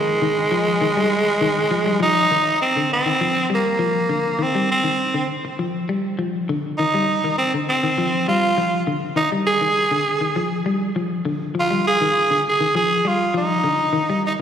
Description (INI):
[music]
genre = afrobeat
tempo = 100 BPM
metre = 4/4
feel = straight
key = F dorian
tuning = A4 = 440 Hz
[part]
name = raspy tenor saxophone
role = melody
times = 0.0-14.3 s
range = Ab3 to Ab4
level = -18 LUFS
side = right 2 dB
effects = slapback echo, tape echo
[part]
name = clean electric guitar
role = arpeggios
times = 0.0-14.3 s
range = D3 to G3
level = -23 LUFS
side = left 3 dB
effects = slapback echo
[sound]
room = moderate lush hall reverb, RT60 2.8 s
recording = live gig heard through the venue's PA, recital hall reverb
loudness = -17 LUFS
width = side -8 dB against mid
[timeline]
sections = 0.0-2.6 A section; 2.6-14.4 B section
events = none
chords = 0.0 Fm9; 2.6 F7sus2